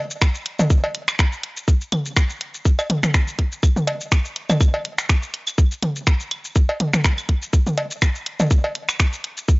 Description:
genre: techno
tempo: 123 BPM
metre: 4/4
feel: swing 55% on 16ths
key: none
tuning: none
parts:
  - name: garage drum kit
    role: drums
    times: 0.1-9.6 s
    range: finger snaps, hi-hat, shaker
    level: -23 LUFS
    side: equal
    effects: overdrive
  - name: electronic kick drum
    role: drums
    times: 0.2-9.6 s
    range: none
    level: -16 LUFS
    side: equal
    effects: overdrive
  - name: electronic claves, toms and cowbell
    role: percussion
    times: 0.2-9.0 s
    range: none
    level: -21 LUFS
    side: equal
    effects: none
room: digital ambience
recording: dry, gritty hardware recording, transformer saturation, cassette tape, nothing above 7.6 kHz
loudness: -18 LUFS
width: side -25 dB against mid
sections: 0.0-9.6 A section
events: none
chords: none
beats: 0.22 | 0.70 1.19 1.68 2.17 | 2.65 3.14 3.63 4.12 | 4.61 5.09 5.58 6.07 | 6.56 7.04 7.53 8.02 | 8.51 9.00 9.48

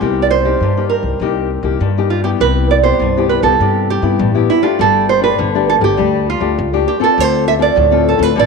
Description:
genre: samba and choro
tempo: 100 BPM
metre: 4/4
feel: straight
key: C major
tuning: A4 = 440 Hz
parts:
  - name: nylon-string guitar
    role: melody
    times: 0.0-8.5 s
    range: E4 to E5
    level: -15 LUFS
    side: right 9 dB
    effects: none
  - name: nylon-string guitar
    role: accompaniment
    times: 0.0-8.5 s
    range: G2 to A4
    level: -16 LUFS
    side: left 14 dB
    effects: none
  - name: upright bass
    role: bass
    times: 0.0-8.5 s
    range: G1 to G2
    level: -18 LUFS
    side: left 1 dB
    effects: none
room: light reverb, studio ambience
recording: 1960s-style stereo with parts hard left and right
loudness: -11 LUFS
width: side -4 dB against mid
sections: 0.0-2.4 A section; 2.4-8.5 B section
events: none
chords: 0.0 Cm7; 2.4 Cmaj7; 4.8 Gsus2; 7.2 Dm7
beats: | 0.01 0.61 1.21 1.81 | 2.40 3.00 3.60 4.20 | 4.79 5.39 5.99 6.58 | 7.18 7.78 8.37

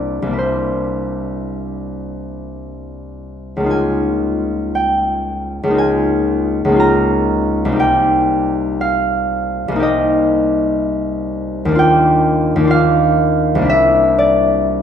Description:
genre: classical, solo harp piece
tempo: 50-65 BPM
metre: 4/4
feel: rubato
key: unclear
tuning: A4 = 439 Hz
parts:
  - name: concert harp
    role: solo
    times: 0.0-14.8 s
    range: C2 to Bb5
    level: -14 LUFS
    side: equal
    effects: none
room: wet recital hall reverb, RT60 1.7 s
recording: minimal, uncompressed stereo recording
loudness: -13 LUFS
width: side -8 dB against mid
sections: 0.0-14.8 A section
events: none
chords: 0.0 C9; 3.7 Db69; 7.8 Cm7; 13.7 C9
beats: 0.37 1.46 2.54 | 3.69 4.75 5.77 6.80 | 7.80 8.82 9.84 10.82 | 11.79 12.73 13.70 14.70

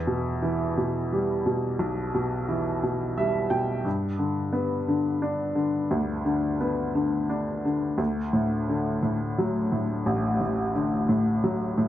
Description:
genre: pop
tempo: 58 BPM (dotted quarters)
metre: 6/8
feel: straight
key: E minor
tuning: A4 = 440 Hz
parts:
  - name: clear upright piano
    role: solo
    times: 0.0-11.9 s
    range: A1 to G5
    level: -24 LUFS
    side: equal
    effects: none
room: light reverb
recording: none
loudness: -24 LUFS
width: side -12 dB against mid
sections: 0.0-11.9 A section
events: upright piano fill 2.8-3.9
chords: 0.0 Em; 3.9 G; 8.0 D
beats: 0.76 | 1.79 2.83 | 3.86 4.89 | 5.92 6.96 | 8.00 9.04 | 10.07 11.10

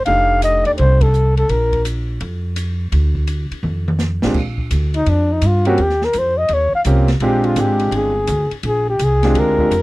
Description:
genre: jazz, small-group swing and bop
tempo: 168 BPM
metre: 4/4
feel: swing 65% on 8ths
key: Bb mixolydian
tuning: A4 = 442 Hz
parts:
  - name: breathy flugelhorn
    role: melody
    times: 0.0-1.9, 5.0-9.8 s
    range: D4 to F5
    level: -17 LUFS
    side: left 1 dB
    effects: none
  - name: upright bass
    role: bass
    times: 0.0-9.8 s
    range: F1 to G2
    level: -17 LUFS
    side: equal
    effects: none
  - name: clear concert grand piano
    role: accompaniment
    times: 0.1-1.1, 4.2-9.7 s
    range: Bb2 to G4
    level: -19 LUFS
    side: right 2 dB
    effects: none
  - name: open jazz drum kit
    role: drums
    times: 0.1-9.8 s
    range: crash cymbal, hi-hat, kick drum, ride cymbal, snare drum, toms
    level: -26 LUFS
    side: equal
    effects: none
room: little or no reverb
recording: dry, close 1970s-style studio recording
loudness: -14 LUFS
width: side -20 dB against mid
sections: 0.0-4.3 A section; 4.3-9.8 B section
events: band accent 1.0; drum fill 3.6-4.3; flugelhorn solo 4.3-9.8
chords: 0.1 F13; 1.5 Bb; 3.6 F69; 4.3 Bb6; 5.8 Eb13; 7.2 Bb13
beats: | 0.06 0.42 0.78 1.14 | 1.49 1.85 2.21 2.56 | 2.92 3.28 3.63 3.99 | 4.35 4.71 5.06 5.42 | 5.78 6.13 6.49 6.85 | 7.21 7.56 7.92 8.28 | 8.63 8.99 9.35 9.71

